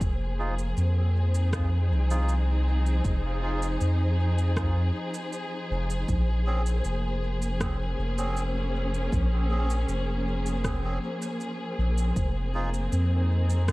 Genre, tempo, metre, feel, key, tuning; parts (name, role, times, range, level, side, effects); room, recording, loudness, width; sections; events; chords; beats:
ambient dub; 79 BPM; 4/4; straight; Bb minor; A4 = 440 Hz
warm studio string section; sustained chords; 0.0-13.7 s; F3 to C5; -32 LUFS; left 1 dB
soft dub sub bass; bass; 0.0-13.7 s; F1 to F2; -25 LUFS; equal
electronic kick drum; drums; 0.0-13.7 s; -29 LUFS; equal; small room ambience
electronic shaker and rim click; drums; 0.0-13.7 s; -39 LUFS; right 1 dB; overdrive, small room ambience, dub echo
melodica; stabs; 0.4-12.7 s; C4 to Ab4; -38 LUFS; right 2 dB; low-pass filter, dub echo
light reverb, digital ambience; vinyl crackle; -24 LUFS; side -20 dB against mid
0.0-13.7 A section
0.0 Fm7; 6.1 Bbm9; 12.2 Fm7
| 0.01 0.77 1.53 2.29 | 3.05 3.81 4.57 5.33 | 6.09 6.85 7.61 8.37 | 9.12 9.88 10.64 11.40 | 12.16 12.92 13.68